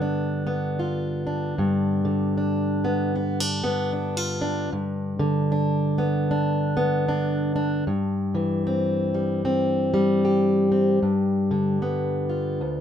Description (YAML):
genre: folk, solo fingerstyle acoustic guitar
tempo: 76 BPM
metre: 4/4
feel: swing 60% on 8ths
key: G mixolydian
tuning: A4 = 440 Hz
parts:
  - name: fingerpicked plugged-in steel-string acoustic guitar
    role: solo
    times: 0.0-12.8 s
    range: D2 to G4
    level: -21 LUFS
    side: equal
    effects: none
room: light reverb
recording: minimal, uncompressed stereo recording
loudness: -21 LUFS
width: side -9 dB against mid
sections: 0.0-11.0 A section; 11.0-12.8 B section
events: none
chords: 0.0 G7; 4.7 G; 7.9 C/G; 11.0 G7